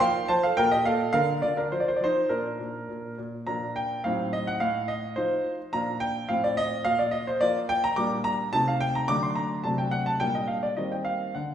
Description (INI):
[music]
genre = classical-period piano sonatina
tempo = 107 BPM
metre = 2/4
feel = straight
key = Bb major, G minor from 8.0 s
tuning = A4 = 440 Hz
[part]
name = warm grand piano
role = solo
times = 0.0-11.5 s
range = A2 to D6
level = -24 LUFS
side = equal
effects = none
[sound]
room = wet stone room reverb, RT60 1.4 s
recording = heard from further back in the room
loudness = -24 LUFS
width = side -9 dB against mid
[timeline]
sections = 0.0-3.5 A section; 3.5-11.5 B section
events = none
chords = 0.0 F; 0.6 Bb5; 1.1 Bb/D; 1.7 F5; 2.3 Bb; 4.0 Adim7; 4.6 F7/A; 5.7 Bb; 6.3 F/A; 6.9 Bb5; 8.0 Gm/Bb; 8.5 Adim/C; 9.1 D; 9.6 D7/C; 10.2 Gm/Bb; 10.8 Eb6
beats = | 0.01 0.58 | 1.14 1.71 | 2.30 2.89 | 3.47 4.04 | 4.61 5.17 | 5.73 6.29 | 6.85 7.41 | 7.97 8.53 | 9.08 9.64 | 10.21 10.78 | 11.36